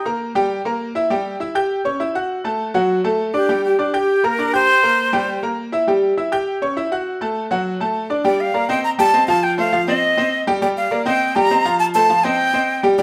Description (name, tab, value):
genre	latin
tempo	202 BPM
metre	4/4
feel	straight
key	G minor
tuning	A4 = 440 Hz
part	breathy bright jazz flute	melody	0.0-0.1, 3.3-5.4, 8.3-13.0 s	G4 to Bb5	-19 LUFS	equal	none
part	bright concert grand piano	accompaniment	0.1-13.0 s	F3 to G6	-21 LUFS	equal	none
room	wet large studio reverb, RT60 0.9 s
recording	band playing live in one room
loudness	-18 LUFS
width	mono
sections	0.0-8.2 A section; 8.2-13.0 B section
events	none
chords	0.0 Gm6; 1.1 Em69/G; 2.3 D; 3.5 Gm; 4.7 C5; 5.9 Em69/G; 7.1 D; 8.2 Gm7; 8.8 Cm; 9.4 F; 10.0 Cm; 10.6 Gm7; 11.2 Cm; 11.8 F; 12.4 Cm